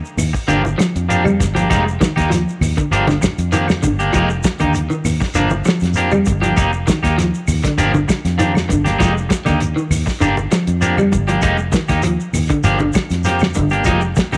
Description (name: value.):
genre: afrobeat.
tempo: 99 BPM.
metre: 4/4.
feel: straight.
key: F dorian.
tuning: A4 = 441 Hz.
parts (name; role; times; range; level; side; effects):
shekere; percussion; 0.1-14.4 s; none; -29 LUFS; equal; none.
fingered electric bass; bass; 0.2-14.4 s; F1 to F2; -22 LUFS; equal; none.
warm soul drum kit; drums; 0.2-14.4 s; hi-hat, kick drum, snare drum; -22 LUFS; equal; none.
claves; percussion; 0.2-14.4 s; none; -34 LUFS; equal; none.
congas; percussion; 0.2-14.4 s; none; -26 LUFS; equal; none.
electric guitar at the edge of break-up; stabs; 0.3-14.4 s; F3 to G4; -22 LUFS; equal; none.
electric guitar at the edge of break-up; arpeggios; 0.5-14.4 s; D3 to G3; -23 LUFS; equal; ensemble chorus.
room: moderate echo chamber reverb, RT60 2.5 s.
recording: none.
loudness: -16 LUFS.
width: mono.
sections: 0.0-14.4 A section.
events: none.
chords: 0.5 Gm7; 1.7 Fm11; 2.9 Gm7; 4.1 Fm11; 5.3 Gm7; 6.6 F9sus4; 7.8 Gm7; 9.0 Fm11; 10.2 Gm7; 11.4 Fm11; 12.6 Gm7; 13.9 Fm11.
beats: 0.48 1.09 | 1.70 2.31 2.92 3.52 | 4.13 4.74 5.35 5.96 | 6.56 7.17 7.78 8.39 | 8.99 9.60 10.21 10.82 | 11.43 12.03 12.64 13.25 | 13.86.